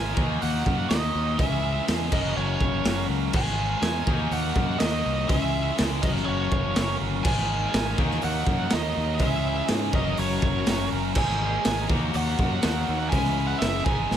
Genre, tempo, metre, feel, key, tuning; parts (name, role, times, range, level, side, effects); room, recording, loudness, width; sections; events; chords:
quiet-loud alternative rock; 123 BPM; 4/4; straight; A4 = 440 Hz
biting lead guitar; melody; 0.0-14.2 s; C#5 to G#5; -30 LUFS; right 2 dB; overdrive
cranked stack guitar; riff; 0.0-14.2 s; F#2 to D#4; -30 LUFS; left 13 dB; overdrive
tight distorted guitar; riff; 0.0-14.2 s; G#2 to G#4; -31 LUFS; right 12 dB; distortion
growling fingered electric bass; bass; 0.0-14.2 s; F#1 to G#2; -29 LUFS; equal; overdrive
raw garage drum kit; drums; 0.2-14.2 s; crash cymbal, hi-hat, kick drum, snare drum; -27 LUFS; equal
dark chamber string section; sustained chords; 7.2-14.2 s; D#4 to B5; -39 LUFS; left 2 dB
light reverb; -22 LUFS; side -9 dB against mid
0.0-14.2 A section
0.2 D#m; 1.4 C#m; 2.1 F#; 3.3 G#sus2; 4.1 D#m; 5.3 C#m; 6.0 F#; 7.2 G#sus2; 8.0 D#m7; 9.2 C#m7; 9.9 F#; 11.2 G#sus2; 11.9 D#m7; 13.1 C#m7